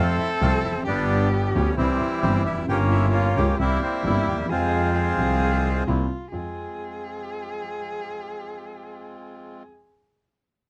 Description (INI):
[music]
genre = tango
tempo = 132 BPM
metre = 4/4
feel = rubato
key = F harmonic minor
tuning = A4 = 440 Hz
[part]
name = bandoneon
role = melody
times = 0.0-5.8 s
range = E3 to G4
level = -27 LUFS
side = equal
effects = none
[part]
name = warm cello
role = second line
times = 0.0-9.6 s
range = E4 to A4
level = -32 LUFS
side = equal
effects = none
[part]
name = dark grand piano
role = accompaniment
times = 0.0-9.6 s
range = G1 to G4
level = -31 LUFS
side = equal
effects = none
[part]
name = bandoneon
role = stabs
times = 0.0-9.6 s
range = Ab3 to G4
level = -38 LUFS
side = equal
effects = none
[part]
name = bright double bass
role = bass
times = 0.0-6.5 s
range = F1 to F2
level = -26 LUFS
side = equal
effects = none
[sound]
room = little or no reverb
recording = close, detailed microphones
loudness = -23 LUFS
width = mono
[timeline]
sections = 0.0-6.3 A section; 6.3-10.0 B section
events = none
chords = 0.0 F; 0.9 G; 1.8 C; 2.7 Gdim; 3.6 C7; 4.5 Fm; 5.9 C7; 6.3 Fm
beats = 0.41 | 0.86 1.32 1.77 2.23 | 2.68 3.13 3.59 4.04 | 4.50 4.95 5.41 5.87 | 6.33 6.78 7.24 7.69 | 8.14 8.60 9.05 9.51